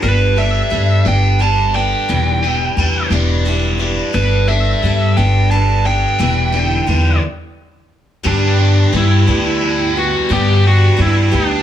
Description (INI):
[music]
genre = rock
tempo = 58 BPM (dotted quarters)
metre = 6/8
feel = straight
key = G major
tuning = A4 = 440 Hz
[part]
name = dark smooth lead guitar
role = melody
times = 0.0-11.6 s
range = D4 to A5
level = -18 LUFS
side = right 2 dB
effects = overdrive
[part]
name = picked steel-string acoustic guitar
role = accompaniment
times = 0.0-11.6 s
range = E2 to A4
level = -23 LUFS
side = left 4 dB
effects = none
[part]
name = biting overdriven guitar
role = riff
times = 0.0-11.6 s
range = E2 to G4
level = -20 LUFS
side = equal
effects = phaser
[part]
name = upright bass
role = bass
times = 0.0-11.6 s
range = E1 to G2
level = -15 LUFS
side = equal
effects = none
[sound]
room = studio ambience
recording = small room ambience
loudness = -12 LUFS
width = side -10 dB against mid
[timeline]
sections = 0.0-8.3 A section; 8.3-11.6 B section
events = lead electric guitar solo 0.0-8.3; stop 7.2-8.3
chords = 0.0 Gadd9; 2.1 Em7; 4.1 Gadd9; 6.2 Em7; 8.3 G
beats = | 0.02 1.05 | 2.08 3.11 | 4.14 5.17 | 6.20 7.23 | 8.25 9.28 | 10.30 11.32